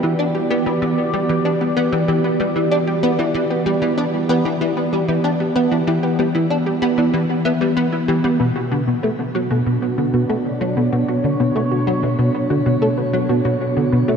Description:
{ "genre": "ambient, sequencer-driven space music", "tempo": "95 BPM", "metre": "4/4", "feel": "straight", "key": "unclear", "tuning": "A4 = 441 Hz", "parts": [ { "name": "sweeping resonant pad", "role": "sustained chords", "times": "0.0-14.2 s", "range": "B2 to D5", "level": "-20 LUFS", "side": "right 1 dB", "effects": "chorus, shimmer reverb" }, { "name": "wide unison pluck", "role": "arpeggios", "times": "0.0-14.2 s", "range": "B3 to E5", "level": "-25 LUFS", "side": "left 2 dB", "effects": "auto-pan, analog delay, shimmer reverb" }, { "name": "plucky analog bass", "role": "riff", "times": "0.0-14.2 s", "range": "B2 to D4", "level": "-19 LUFS", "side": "equal", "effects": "ensemble chorus, analog delay, shimmer reverb" } ], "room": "wet cathedral reverb, RT60 5.4 s", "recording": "in a vast, echoing space, cassette tape", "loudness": "-16 LUFS", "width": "side -6 dB against mid", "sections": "0.0-14.2 A section", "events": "none", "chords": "0.0 Em7; 8.4 Bmadd9" }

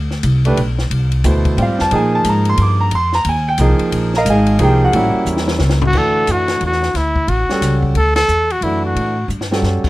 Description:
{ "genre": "modal jazz", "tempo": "179 BPM", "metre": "3/4", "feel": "swing 63% on 8ths", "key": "D major from 5.9 s", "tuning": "A4 = 436 Hz", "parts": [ { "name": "upright bass", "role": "bass", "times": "0.0-9.9 s", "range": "Ab1 to Bb2", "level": "-16 LUFS", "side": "equal", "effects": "none" }, { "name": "compact cocktail drum kit", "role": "drums", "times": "0.1-9.9 s", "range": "crash cymbal, hi-hat, kick drum, ride cymbal, snare drum, toms", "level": "-24 LUFS", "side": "left 2 dB", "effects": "none" }, { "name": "warm baby grand piano", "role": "accompaniment", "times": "0.5-9.9 s", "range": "B2 to D6", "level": "-17 LUFS", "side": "right 2 dB", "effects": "none" }, { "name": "warm trumpet", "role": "melody", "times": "5.9-9.3 s", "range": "E4 to A4", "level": "-16 LUFS", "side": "equal", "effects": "none" } ], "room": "little or no reverb", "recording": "close, detailed microphones", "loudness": "-13 LUFS", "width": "side -18 dB against mid", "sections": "0.0-5.9 A section; 5.9-9.9 B section", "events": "drum fill 5.3-5.9, 9.3-9.6; band accent 8.1", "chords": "0.0 G9sus4; 1.9 Bb9sus4; 4.9 A7b9; 5.9 Dmaj9" }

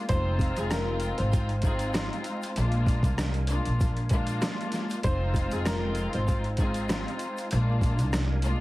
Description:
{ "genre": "hip hop, boom-bap hip-hop", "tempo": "97 BPM", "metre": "4/4", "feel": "swing 54% on 16ths", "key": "F dorian", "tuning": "A4 = 440 Hz", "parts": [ { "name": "muted studio string section", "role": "accompaniment", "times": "0.0-8.6 s", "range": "Ab3 to F4", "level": "-32 LUFS", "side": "left 1 dB", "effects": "high-pass filter, low-pass filter" }, { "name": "percussive tonewheel organ", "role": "sustained chords", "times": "0.0-8.6 s", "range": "D4 to Ab5", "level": "-43 LUFS", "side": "equal", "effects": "none" }, { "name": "warm upright piano", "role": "melody", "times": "0.1-7.5 s", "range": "Ab4 to C5", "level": "-35 LUFS", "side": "left 1 dB", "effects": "high-pass filter, low-pass filter, ping-pong delay" }, { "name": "edgy saxophone section", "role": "stabs", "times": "0.1-6.8 s", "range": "Ab3 to C5", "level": "-42 LUFS", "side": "right 1 dB", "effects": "high-pass filter, low-pass filter, ping-pong delay" }, { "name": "upright bass", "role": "bass", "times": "0.1-8.5 s", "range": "F1 to C2", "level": "-28 LUFS", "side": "equal", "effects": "none" }, { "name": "boom bap sampler-style drum kit", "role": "drums", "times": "0.1-8.6 s", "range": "hi-hat, kick drum, rim click, snare drum", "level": "-29 LUFS", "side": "equal", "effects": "none" }, { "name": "tube shaker", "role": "percussion", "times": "0.1-8.6 s", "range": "none", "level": "-52 LUFS", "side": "right 5 dB", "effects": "none" } ], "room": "little or no reverb", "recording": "heavily compressed radio sound, vinyl crackle", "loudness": "-25 LUFS", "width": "side -18 dB against mid", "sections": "0.0-8.6 A section", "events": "none", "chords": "0.1 Fm7; 2.6 Bb7; 5.0 Fm7; 7.5 Bb7" }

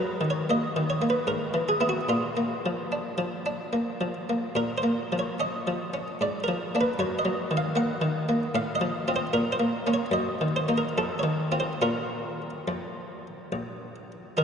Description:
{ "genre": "classical, baroque-style suite movement for harpsichord", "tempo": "70-78 BPM", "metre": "3/4", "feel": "rubato", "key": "Bb minor from 4.5 s", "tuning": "A4 = 440 Hz", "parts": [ { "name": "buff-stop harpsichord", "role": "solo", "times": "0.0-14.4 s", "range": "Bb1 to Gb5", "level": "-25 LUFS", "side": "equal", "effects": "none" } ], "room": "wet cathedral reverb, RT60 5.3 s", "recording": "in a vast, echoing space, nothing above 10.4 kHz", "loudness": "-25 LUFS", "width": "side -7 dB against mid", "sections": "0.0-14.4 A section", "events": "none", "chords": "0.0 Ebm; 1.3 E/G#; 2.1 Bb; 4.5 Bbm; 6.2 Bb7/Ab; 7.0 Ebm/Gb; 8.5 F7/A; 9.3 Bbm; 10.1 Ebm/Gb; 10.9 F5; 11.8 Bbm" }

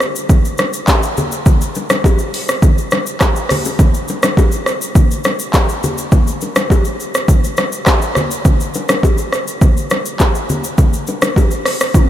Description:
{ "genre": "afrobeats", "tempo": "103 BPM", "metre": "4/4", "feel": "straight", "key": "none", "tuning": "none", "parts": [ { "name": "deep house drum kit", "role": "drums", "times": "0.0-12.1 s", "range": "handclaps, hi-hat, kick drum, rim click, shaker, toms", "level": "-13 LUFS", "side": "equal", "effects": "none" }, { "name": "congas and bongos", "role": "percussion", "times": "0.3-12.1 s", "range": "none", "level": "-20 LUFS", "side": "left 2 dB", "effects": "none" } ], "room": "light reverb, digital ambience", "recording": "none", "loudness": "-12 LUFS", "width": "side -12 dB against mid", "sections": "0.0-12.1 A section", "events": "drum fill 11.9", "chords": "none" }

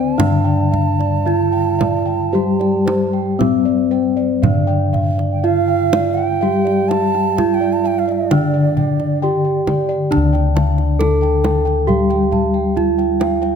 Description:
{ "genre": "Javanese gamelan", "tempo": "56-68 BPM", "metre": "4/4", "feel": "straight", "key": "D slendro", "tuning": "A4 = 440 Hz", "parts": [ { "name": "gamelan-type bronze metallophone", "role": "melody", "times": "0.0-13.6 s", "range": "C4-25c to A4", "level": "-18 LUFS", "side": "right 1 dB", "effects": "none" }, { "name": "breathy bass bansuri", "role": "second line", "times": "0.0-9.6 s", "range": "D5 to A5", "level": "-23 LUFS", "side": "right 6 dB", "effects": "none" }, { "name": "gamelan-type bronze metallophone", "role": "accompaniment", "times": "0.0-13.6 s", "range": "D3 to G3", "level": "-21 LUFS", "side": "left 4 dB", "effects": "none" }, { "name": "gamelan-type bossed gongs", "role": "arpeggios", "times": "0.0-13.6 s", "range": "C5-25c to A5", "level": "-26 LUFS", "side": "left 4 dB", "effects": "none" }, { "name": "gamelan-type bronze metallophone", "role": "arpeggios", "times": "0.0-13.6 s", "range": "C5-25c to A5", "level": "-27 LUFS", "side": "right 9 dB", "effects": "none" }, { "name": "gamelan-type bossed gongs", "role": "bass", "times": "0.0-13.6 s", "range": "D2 to G4", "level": "-20 LUFS", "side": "left 1 dB", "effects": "none" }, { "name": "kendang", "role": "percussion", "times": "0.2-13.5 s", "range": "none", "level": "-23 LUFS", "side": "right 4 dB", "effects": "none" } ], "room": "light reverb", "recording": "close, detailed microphones", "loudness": "-14 LUFS", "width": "side -7 dB against mid", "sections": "0.0-10.1 A section; 10.1-13.6 B section", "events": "none", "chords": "none" }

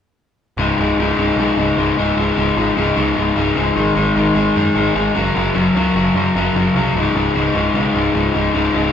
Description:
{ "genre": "punk", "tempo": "151 BPM", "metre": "4/4", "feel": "straight", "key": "unclear", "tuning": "A4 = 438 Hz", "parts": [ { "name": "overdriven electric guitar", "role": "riff", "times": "0.6-8.9 s", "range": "Db2 to Ab3", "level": "-14 LUFS", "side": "left 2 dB", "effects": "none" }, { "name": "growling picked electric bass", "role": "bass", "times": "0.6-8.9 s", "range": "Db1 to Gb2", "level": "-23 LUFS", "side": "right 2 dB", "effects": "overdrive" } ], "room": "wet large studio reverb, RT60 1.3 s", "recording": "band playing live in one room", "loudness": "-14 LUFS", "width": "side -8 dB against mid", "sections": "0.6-8.9 A section", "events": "none", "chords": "0.6 Db5; 3.8 Ab5; 5.2 Gb5; 7.0 Db5" }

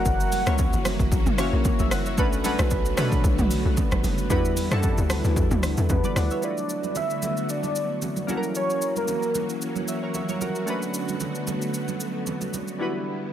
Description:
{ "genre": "amapiano", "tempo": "113 BPM", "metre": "4/4", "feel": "swing 55% on 16ths", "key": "unclear", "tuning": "A4 = 440 Hz", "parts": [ { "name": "warm velvety synth lead", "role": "melody", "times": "0.0-1.0, 5.9-9.7 s", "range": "A#4 to F#5", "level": "-28 LUFS", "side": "equal", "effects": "chorus, tremolo, tape echo" }, { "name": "glassy digital keys", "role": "accompaniment", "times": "0.0-13.3 s", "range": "G3 to F#5", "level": "-29 LUFS", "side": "equal", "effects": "chorus" }, { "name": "string machine, violas", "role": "sustained chords", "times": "0.0-13.3 s", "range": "D3 to F#4", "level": "-31 LUFS", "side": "equal", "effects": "ensemble chorus, sidechain pumping" }, { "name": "hollow log drum bass", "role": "bass", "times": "0.0-6.3 s", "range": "F#1 to B2", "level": "-24 LUFS", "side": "equal", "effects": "none" }, { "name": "deep house drum kit", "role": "drums", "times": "0.1-12.8 s", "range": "hi-hat, kick drum, rim click, shaker, toms", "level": "-26 LUFS", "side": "equal", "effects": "overdrive" }, { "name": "congas", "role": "percussion", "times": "0.3-12.7 s", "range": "none", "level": "-34 LUFS", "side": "right 8 dB", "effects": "none" } ], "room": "digital ambience", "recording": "none", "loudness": "-22 LUFS", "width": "side -10 dB against mid", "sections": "0.0-6.4 A section; 6.4-13.3 B section", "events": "drop 0.0-6.4; drums muted 12.8-13.3", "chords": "0.0 F#7; 2.2 Bm7; 4.3 Em7; 6.4 D6; 8.3 F#7; 10.7 Bm7; 12.8 Em7" }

